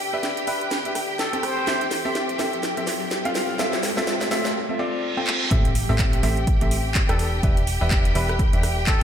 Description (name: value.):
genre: piano house.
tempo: 125 BPM.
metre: 4/4.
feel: swing 58% on 16ths.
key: unclear.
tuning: A4 = 440 Hz.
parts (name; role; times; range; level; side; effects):
clear symphonic string section; sustained chords; 0.0-9.0 s; G4 to G5; -30 LUFS; equal; sidechain pumping.
riser, reverse cymbal and impact; sound effects; 2.0-7.4 s; none; -32 LUFS; equal; none.
bright baby grand piano; riff; 0.1-9.0 s; C4 to G5; -27 LUFS; equal; sidechain pumping, low-pass filter, analog delay.
house drum kit; drums; 0.2-9.0 s; handclaps, hi-hat, rim click, snare drum; -28 LUFS; equal; none.
trumpet with plunger mute; melody; 0.5-1.9, 7.1-9.0 s; A4 to C5; -30 LUFS; equal; analog delay.
plucky analog bass; bass; 5.5-9.0 s; E1 to A1; -24 LUFS; equal; sidechain pumping.
electronic kick drum; drums; 5.5-9.0 s; none; -21 LUFS; equal; none.
room: moderate lush hall reverb, RT60 1.5 s, small room ambience.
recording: dreamy mix soaked in reverb.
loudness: -20 LUFS.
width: side -9 dB against mid.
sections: 0.0-5.5 A section; 5.5-9.0 B section.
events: build-up 0.0-5.5; drum fill 0.0-4.6, 5.3; riser 2.0-4.6; reverse cymbal 4.6-5.5; drop 5.5-9.0; impact 5.5-7.4.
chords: 0.0 Am7; 3.4 Fmaj7; 5.5 Em7.